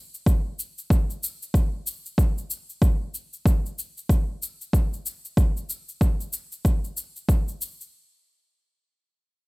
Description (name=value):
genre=organic downtempo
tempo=94 BPM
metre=4/4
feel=swing 60% on 16ths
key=none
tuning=none
part: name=shaker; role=drums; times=0.1-7.9 s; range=none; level=-33 LUFS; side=left 2 dB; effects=overdrive
part: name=electronic kick drum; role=drums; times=0.3-7.4 s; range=none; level=-20 LUFS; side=equal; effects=overdrive
room=little or no reverb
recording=rough home demo mix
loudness=-23 LUFS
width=side -26 dB against mid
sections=0.0-7.9 A section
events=none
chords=none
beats=| 0.26 0.90 1.54 2.18 | 2.81 3.45 4.09 4.73 | 5.37 6.00 6.64 7.28